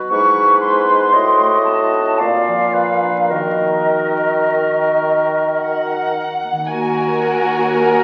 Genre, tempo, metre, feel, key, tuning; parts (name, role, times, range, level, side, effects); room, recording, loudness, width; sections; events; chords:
classical; 52-60 BPM; 3/4; rubato; Eb minor; A4 = 442 Hz
bright clarinet; second line; 0.0-6.4 s; E4 to Gb4; -28 LUFS; equal
warm oboe; second line; 0.0-6.4 s; Bb4 to Eb5; -24 LUFS; equal
concert harp; arpeggios; 0.0-8.0 s; G#2 to Bb4; -35 LUFS; equal
flute section; second line; 0.1-6.1 s; Eb5 to Db6; -18 LUFS; equal
mellow bassoon; accompaniment; 0.1-6.4 s; G#2 to Eb3; -21 LUFS; equal
rich chamber violin section; melody; 5.6-8.0 s; Gb5 to Ab5; -24 LUFS; equal
rich studio violin section; second line; 6.7-8.0 s; Gb4 to Bb4; -20 LUFS; equal
mellow French horn section; sustained chords; 6.7-8.0 s; Bb3 to Gb4; -23 LUFS; equal
rich chamber cello section; bass; 6.7-8.0 s; Eb2; -33 LUFS; equal
rich chamber double bass section; bass; 6.7-8.0 s; Eb2; -33 LUFS; equal
rich chamber viola section; accompaniment; 7.8-8.0 s; Bb4; -19 LUFS; equal
wet concert hall reverb, RT60 1.8 s; very old 78 rpm record, vinyl crackle; -16 LUFS; mono
0.0-6.7 A section; 6.7-8.0 B section
0.1 E/G#; 1.1 Adim7; 2.2 Bb; 3.3 Ebm